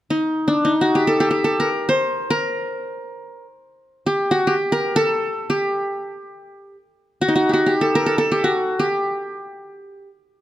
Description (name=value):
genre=Arabic maqam ensemble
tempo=free time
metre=none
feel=none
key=G maqam nahawand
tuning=A4 = 445 Hz
part: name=qanun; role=solo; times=0.1-10.1 s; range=D4 to C5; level=-18 LUFS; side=equal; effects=none
room=light reverb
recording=close, detailed microphones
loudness=-17 LUFS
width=side -13 dB against mid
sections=0.0-10.4 A section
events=none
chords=none